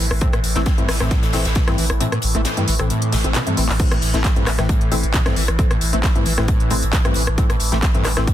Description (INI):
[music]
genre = driving peak-time techno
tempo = 134 BPM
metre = 4/4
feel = straight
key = A minor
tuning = A4 = 440 Hz
[part]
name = screaming distorted acid line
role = riff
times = 0.0-8.3 s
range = G2 to C4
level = -25 LUFS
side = equal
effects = distortion, ensemble chorus, vintage 12-bit sampler grit, sidechain pumping
[part]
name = filtered dub chord stab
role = stabs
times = 0.0-8.3 s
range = E3 to C4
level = -26 LUFS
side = left 3 dB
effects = lush chorus, sidechain pumping, dub echo
[part]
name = warm sub bass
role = bass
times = 0.0-8.3 s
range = A1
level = -21 LUFS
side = equal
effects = overdrive, sidechain pumping, low-pass filter
[part]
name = overtone-sweeping drone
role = drone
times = 0.0-8.3 s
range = A2 to E3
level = -27 LUFS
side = equal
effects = chorus, built-in reverb, sidechain pumping
[part]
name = techno drum kit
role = drums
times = 0.1-8.3 s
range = crash cymbal, handclaps, hi-hat, rim click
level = -24 LUFS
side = equal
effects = overdrive, studio reverb
[part]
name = electronic kick drum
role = drums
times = 0.2-8.3 s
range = none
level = -18 LUFS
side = equal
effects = overdrive, studio reverb
[part]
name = gated 80s drum kit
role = drums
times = 0.2-8.3 s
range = hi-hat, snare drum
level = -30 LUFS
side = left 2 dB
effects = sidechain pumping on hats, high-pass filter on hats, studio reverb, high-pass filter on snare, high-pass filter on room
[part]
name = swell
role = sound effects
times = 3.1-3.8 s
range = none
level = -33 LUFS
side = left 5 dB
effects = none
[sound]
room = little or no reverb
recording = dense, heavily limited modern master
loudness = -16 LUFS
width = side -12 dB against mid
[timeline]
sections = 0.0-3.8 A section; 3.8-8.3 B section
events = kick drops out 2.0-3.8; swell 3.1-3.8; drum fill 3.3-3.8; band accent 3.7; drop 3.8-8.3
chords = 0.0 Am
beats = | 0.21 0.66 1.11 1.56 | 2.01 2.45 2.90 3.35 | 3.80 4.25 4.69 5.14 | 5.59 6.04 6.48 6.93 | 7.38 7.83 8.27